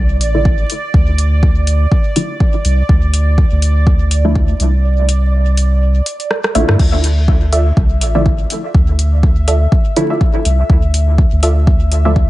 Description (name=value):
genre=dub techno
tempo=123 BPM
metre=4/4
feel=swing 56% on 16ths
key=D minor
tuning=A4 = 441 Hz
part: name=soft dub sub bass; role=bass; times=0.0-12.3 s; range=A1 to G2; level=-12 LUFS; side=equal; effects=sidechain pumping
part: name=bubbling stepped-filter texture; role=texture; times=0.0-12.3 s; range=D5 to E5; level=-24 LUFS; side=right 2 dB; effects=chorus, built-in reverb, sidechain pumping
part: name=deep house drum kit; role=drums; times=0.2-12.0 s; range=crash cymbal, hi-hat, rim click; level=-21 LUFS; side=equal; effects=overdrive, dub echo
part: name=filtered dub chord stab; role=stabs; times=0.3-12.2 s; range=D3 to E4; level=-19 LUFS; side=equal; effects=chorus, phaser, sidechain pumping, dub echo
part: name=electronic kick drum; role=drums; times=0.5-12.3 s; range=none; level=-12 LUFS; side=equal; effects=overdrive
part: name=filtered dub chord stab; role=riff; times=7.5-12.2 s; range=F4 to E5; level=-21 LUFS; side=right 1 dB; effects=chorus, sidechain pumping, dub echo
room=digital ambience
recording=echo-heavy mix, vinyl crackle, nothing above 11.0 kHz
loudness=-11 LUFS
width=side -17 dB against mid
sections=0.0-12.3 A section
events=filter sweep on synth stab 0.0-12.3; kick drops out 4.8-6.8; drum fill 6.3-6.8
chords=0.0 Dmadd9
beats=0.45 | 0.94 1.43 1.92 2.40 | 2.89 3.38 3.87 4.36 | 4.84 5.33 5.82 6.31 | 6.79 7.28 7.77 8.26 | 8.74 9.23 9.72 10.21 | 10.70 11.18 11.67 12.16